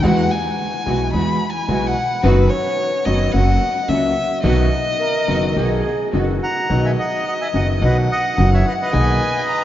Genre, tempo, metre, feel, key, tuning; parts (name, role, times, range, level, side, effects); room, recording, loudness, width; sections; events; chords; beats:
tango; 108 BPM; 4/4; rubato; B major; A4 = 439 Hz
rich violin; second line; 0.0-9.6 s; B4 to B5; -22 LUFS; left 2 dB
clear concert grand piano; accompaniment; 0.0-9.2 s; F#1 to G#4; -21 LUFS; left 1 dB
rich symphonic string section; stabs; 0.0-6.4 s; G#3 to F#4; -28 LUFS; right 4 dB
upright bass; bass; 0.0-9.2 s; F#1 to E2; -19 LUFS; right 1 dB
breathy mellow silver concert flute; second line; 5.0-6.7 s; F#4 to A#4; -27 LUFS; right 1 dB
bandoneon; melody; 6.4-9.6 s; B4 to A#5; -22 LUFS; right 1 dB
wet cathedral reverb, RT60 4.9 s; in a vast, echoing space, nothing above 7.5 kHz; -16 LUFS; side -12 dB against mid
0.0-6.7 A section; 6.7-9.6 B section
violin solo 0.0-6.7
0.0 Eadd9; 2.2 B/F#; 3.3 F#; 4.4 B; 8.9 G#madd9/B
| 0.03 0.59 1.13 1.68 | 2.23 2.78 3.33 3.88 | 4.44 5.00 5.56 6.13 | 6.70 7.26 7.82 8.38 | 8.94 9.49